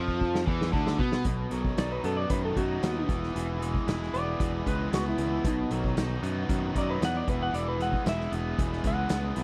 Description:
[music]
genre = classic rock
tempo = 115 BPM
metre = 4/4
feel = straight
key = B major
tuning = A4 = 442 Hz
[part]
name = biting overdriven guitar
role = riff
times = 0.0-9.4 s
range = B2 to E4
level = -38 LUFS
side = equal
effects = none
[part]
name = cranked stack guitar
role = riff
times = 0.0-9.4 s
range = B2 to E4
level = -37 LUFS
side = equal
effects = overdrive, spring reverb
[part]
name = overdriven electric guitar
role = riff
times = 0.0-1.2 s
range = D3 to B3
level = -37 LUFS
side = equal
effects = none
[part]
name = modern bright picked electric bass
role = bass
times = 0.0-9.4 s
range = E1 to B2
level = -34 LUFS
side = equal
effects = none
[part]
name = vintage drum kit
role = drums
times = 0.1-9.4 s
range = hi-hat, kick drum, snare drum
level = -34 LUFS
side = equal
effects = none
[part]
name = clean lap steel guitar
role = melody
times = 1.8-9.4 s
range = D#4 to F#5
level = -35 LUFS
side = equal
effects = tape echo
[sound]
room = little or no reverb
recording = dry, close 1970s-style studio recording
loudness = -29 LUFS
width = mono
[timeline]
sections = 0.0-1.3 A section; 1.3-9.4 B section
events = drum fill 0.0-1.3; electric slide guitar solo 1.3-9.4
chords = 0.0 B5; 1.3 B; 3.1 E; 5.4 B; 7.3 E

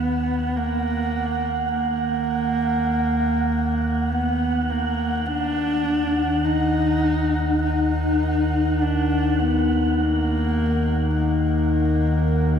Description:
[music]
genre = dark ambient drone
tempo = free time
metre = none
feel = none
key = Eb harmonic minor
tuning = A4 = 439 Hz
[part]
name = warm horsehead fiddle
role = melody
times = 0.0-12.6 s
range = Bb3 to Eb4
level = -23 LUFS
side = equal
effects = tape echo
[part]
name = analog drone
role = drone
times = 0.0-12.6 s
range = Eb2 to Eb3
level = -23 LUFS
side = left 1 dB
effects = chorus
[part]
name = wind-like tuned noise texture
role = texture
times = 0.0-12.6 s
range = Gb5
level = -28 LUFS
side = right 2 dB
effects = built-in reverb
[sound]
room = wet cathedral reverb, RT60 5.6 s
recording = none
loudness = -19 LUFS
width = side -7 dB against mid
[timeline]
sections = 0.0-12.6 A section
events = none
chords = 0.0 Ebm

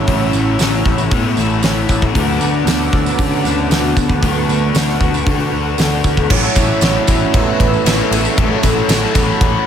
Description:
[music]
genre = rock, shoegaze and dream pop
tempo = 116 BPM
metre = 4/4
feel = straight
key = A major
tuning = A4 = 440 Hz
[part]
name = soft octave-layered synth lead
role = melody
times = 0.0-9.7 s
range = A3 to C#5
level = -22 LUFS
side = equal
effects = chorus, phaser, tape echo
[part]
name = brassy analog pad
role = sustained chords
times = 0.0-9.7 s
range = B4 to E6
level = -24 LUFS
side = right 3 dB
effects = chorus
[part]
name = fingerpicked twelve-string acoustic guitar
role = arpeggios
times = 0.0-9.7 s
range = F#3 to A4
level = -26 LUFS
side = right 11 dB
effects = ensemble chorus, tape echo
[part]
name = electric guitar through a small old amp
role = riff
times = 0.0-9.7 s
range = A2 to A4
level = -25 LUFS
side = right 12 dB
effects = reverse reverb
[part]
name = overdriven semi-hollow guitar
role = riff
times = 0.0-9.7 s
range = A2 to F#4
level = -19 LUFS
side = left 10 dB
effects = lush chorus
[part]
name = growling picked electric bass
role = bass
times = 0.0-9.6 s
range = A1 to D3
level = -20 LUFS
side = equal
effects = overdrive
[part]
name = huge arena drum kit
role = drums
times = 0.1-9.5 s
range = crash cymbal, hi-hat, kick drum, ride cymbal, snare drum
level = -17 LUFS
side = equal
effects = none
[part]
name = tambourine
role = percussion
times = 0.3-9.5 s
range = none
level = -28 LUFS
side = right 14 dB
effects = none
[sound]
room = studio reverb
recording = none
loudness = -12 LUFS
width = side -8 dB against mid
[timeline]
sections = 0.0-6.3 A section; 6.3-9.7 B section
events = none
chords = 0.0 A6; 2.2 D6; 6.3 A6

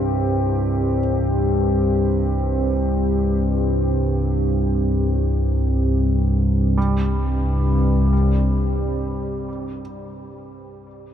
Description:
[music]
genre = dark ambient drone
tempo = free time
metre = none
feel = none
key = unclear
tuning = A4 = 445 Hz
[part]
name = deep dark ambient pad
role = sustained chords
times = 0.0-10.1 s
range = C4 to D5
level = -24 LUFS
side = equal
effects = chorus, built-in reverb
[part]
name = warm grand piano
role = arpeggios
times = 0.0-11.1 s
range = G3 to Bb3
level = -31 LUFS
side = right 1 dB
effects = ping-pong delay
[part]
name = analog drone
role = drone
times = 0.0-9.8 s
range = C2 to G2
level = -19 LUFS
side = equal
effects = chorus
[sound]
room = moderate huge ambient reverb, RT60 8.8 s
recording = dark, warm production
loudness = -18 LUFS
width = side -9 dB against mid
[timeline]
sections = 0.0-6.8 A section; 6.8-10.4 B section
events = none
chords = 0.0 C5

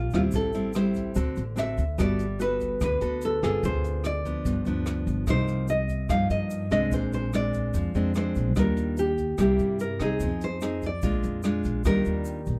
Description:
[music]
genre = bossa nova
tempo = 146 BPM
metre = 4/4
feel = straight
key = Eb major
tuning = A4 = 441 Hz
[part]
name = nylon-string guitar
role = melody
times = 0.0-12.6 s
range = F4 to F5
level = -32 LUFS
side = equal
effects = plate reverb
[part]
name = nylon-string guitar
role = accompaniment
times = 0.0-12.6 s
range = G2 to A4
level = -30 LUFS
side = equal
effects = none
[part]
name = upright bass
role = bass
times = 0.0-12.6 s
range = G1 to G2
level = -32 LUFS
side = equal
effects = none
[part]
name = jazz brush drum kit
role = drums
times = 0.1-12.6 s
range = hi-hat, kick drum, rim click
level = -36 LUFS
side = equal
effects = none
[part]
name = tube shaker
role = percussion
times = 0.1-12.6 s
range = none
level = -53 LUFS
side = equal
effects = none
[part]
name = breathy trombone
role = second line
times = 11.9-12.6 s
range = G3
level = -39 LUFS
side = equal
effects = none
[sound]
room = little or no reverb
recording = dark, warm production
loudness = -26 LUFS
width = mono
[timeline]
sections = 0.0-11.8 A section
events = none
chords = 0.3 Am7; 1.2 D7; 2.0 Gmaj9; 3.6 Dm7b5; 4.4 G7; 5.3 Cm11; 6.9 Bb9; 8.6 Ebmaj9; 9.4 C7; 10.2 Fm7; 11.0 Bb7; 11.8 Ebmaj9

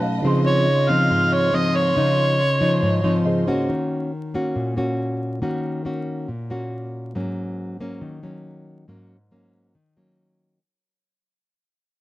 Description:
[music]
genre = bossa nova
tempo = 139 BPM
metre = 4/4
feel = straight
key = unclear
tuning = A4 = 440 Hz
[part]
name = nylon-string guitar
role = accompaniment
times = 0.0-10.6 s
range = Ab2 to Gb4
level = -22 LUFS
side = left 1 dB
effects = none
[part]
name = tine electric piano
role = accompaniment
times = 0.0-3.7 s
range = Cb3 to C6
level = -25 LUFS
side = right 2 dB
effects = none
[part]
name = warm symphonic violin section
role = sustained chords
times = 0.0-3.7 s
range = F4 to C6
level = -32 LUFS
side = right 2 dB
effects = none
[part]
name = overdriven harmonica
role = melody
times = 0.5-3.3 s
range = Db5 to F5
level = -21 LUFS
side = right 1 dB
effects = none
[sound]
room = moderate spring reverb, RT60 2.5 s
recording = vinyl crackle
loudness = -19 LUFS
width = side -16 dB against mid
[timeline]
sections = 0.0-3.7 A section; 3.7-10.6 B section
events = tine electric piano fill 0.0, 3.0-3.7; fade-out 3.7-10.6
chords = 0.2 Dbmaj9; 3.7 Ebm7; 7.2 Ab9sus4

